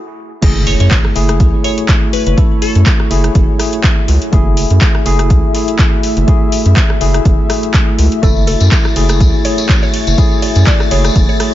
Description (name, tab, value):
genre	deep house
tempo	123 BPM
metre	4/4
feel	swing 55% on 16ths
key	F# minor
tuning	A4 = 440 Hz
part	dark analog pad	sustained chords	1.1-11.5 s	A3 to E5	-26 LUFS	left 1 dB	chorus, sidechain pumping
part	tine electric piano	stabs	0.4-11.5 s	A3 to A4	-18 LUFS	left 1 dB	fast stereo tremolo, sidechain pumping, low-pass filter, dub echo
part	round analog bass	bass	0.4-11.3 s	F#1 to F#2	-12 LUFS	equal	sidechain pumping
part	deep house drum kit	drums	0.4-11.5 s	crash cymbal, handclaps, hi-hat, ride cymbal, rim click	-19 LUFS	equal	overdrive, studio reverb
part	electronic kick drum	drums	0.4-11.3 s	none	-12 LUFS	equal	overdrive, studio reverb
part	impact	sound effects	0.5-2.4 s	none	-24 LUFS	equal	none
part	glassy wavetable pluck	melody	0.7-3.0 s	A4 to C#5	-21 LUFS	left 1 dB	chorus, ping-pong delay
part	deep dark ambient pad	texture	3.3-11.5 s	E5	-26 LUFS	left 6 dB	chorus, built-in reverb, sidechain pumping
part	mallet-like synth pluck	melody	8.2-11.5 s	A4 to D5	-23 LUFS	equal	analog chorus, dub echo
part	tambourine	percussion	8.2-11.4 s	none	-24 LUFS	left 5 dB	none
part	soft string machine	texture	8.2-11.5 s	A6	-27 LUFS	right 1 dB	ensemble chorus
room	digital ambience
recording	nothing above 7.5 kHz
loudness	-9 LUFS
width	side -13 dB against mid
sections	0.4-11.5 A section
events	stop 0.0-0.4; drop 0.4-11.5; impact 0.4-2.4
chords	0.4 F#m9